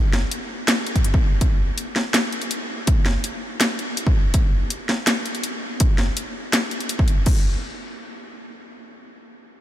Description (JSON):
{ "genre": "drum and bass", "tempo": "164 BPM", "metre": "4/4", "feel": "half-time", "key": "none", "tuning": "none", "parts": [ { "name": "drum and bass drum kit", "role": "drums", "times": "0.1-7.3 s", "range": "crash cymbal, hi-hat, snare drum", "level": "-23 LUFS", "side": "equal", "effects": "overdrive" }, { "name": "electronic kick drum", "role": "drums", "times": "1.0-7.3 s", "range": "none", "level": "-18 LUFS", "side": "equal", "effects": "none" } ], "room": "light reverb, digital ambience", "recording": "none", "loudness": "-19 LUFS", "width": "side -13 dB against mid", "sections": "0.0-7.3 A section; 7.3-9.6 B section", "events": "none", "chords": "none" }